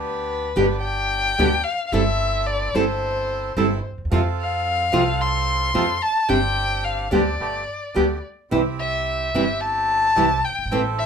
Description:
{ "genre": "tango", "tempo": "109 BPM", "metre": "4/4", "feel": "rubato", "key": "C major", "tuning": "A4 = 440 Hz", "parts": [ { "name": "warm violin", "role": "second line", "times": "0.0-11.1 s", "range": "B4 to C6", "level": "-22 LUFS", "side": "left 3 dB", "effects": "none" }, { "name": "bandoneon", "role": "stabs", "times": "0.0-11.1 s", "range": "A3 to A4", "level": "-29 LUFS", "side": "right 5 dB", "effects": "none" }, { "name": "upright bass", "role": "bass", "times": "0.0-11.1 s", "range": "F#1 to F2", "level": "-27 LUFS", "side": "right 1 dB", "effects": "none" }, { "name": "nylon-string guitar", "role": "accompaniment", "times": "0.6-10.8 s", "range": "B2 to A4", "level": "-20 LUFS", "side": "right 1 dB", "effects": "none" } ], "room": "moderate studio ambience, RT60 0.5 s", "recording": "minimal, uncompressed stereo recording", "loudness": "-19 LUFS", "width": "side -7 dB against mid", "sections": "0.0-11.1 A section", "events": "violin solo 0.0-11.1", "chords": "0.0 G; 1.9 C6/G; 4.1 F; 6.3 Gsus4; 7.4 Gadd9; 8.5 C" }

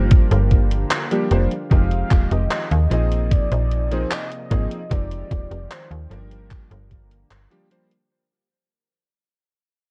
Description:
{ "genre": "vaporwave", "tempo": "75 BPM", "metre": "4/4", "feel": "straight", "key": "unclear", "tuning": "A4 = 441 Hz", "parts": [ { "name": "warm velvety synth lead", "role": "melody", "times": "0.0-6.9 s", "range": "Bb4 to F5", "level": "-34 LUFS", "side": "equal", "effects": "chorus, tape echo" }, { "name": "bright electric grand piano", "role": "accompaniment", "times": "0.0-7.9 s", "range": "F3 to C5", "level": "-29 LUFS", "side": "equal", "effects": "analog chorus, vintage 12-bit sampler grit, tape echo" }, { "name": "lush unison pad", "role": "sustained chords", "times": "0.0-8.1 s", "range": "C3 to G4", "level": "-36 LUFS", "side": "equal", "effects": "chorus" }, { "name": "slap-like FM bass", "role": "bass", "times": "0.0-7.5 s", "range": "Eb1 to Eb2", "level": "-22 LUFS", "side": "equal", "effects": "tube saturation" }, { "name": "electronic kick drum", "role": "drums", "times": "0.1-7.1 s", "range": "none", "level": "-18 LUFS", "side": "equal", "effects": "studio reverb" }, { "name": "gated 80s digital drum machine", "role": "drums", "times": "0.1-8.1 s", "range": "handclaps, hi-hat", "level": "-29 LUFS", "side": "equal", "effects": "gated reverb, studio reverb" } ], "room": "little or no reverb", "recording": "dark, warm production, cassette tape", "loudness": "-20 LUFS", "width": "mono", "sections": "0.0-8.1 A section", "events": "fade-out 0.0-8.1", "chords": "0.1 Gm7; 1.7 Fm9; 2.9 Bb9sus4; 4.9 Fm9; 6.5 Gm7" }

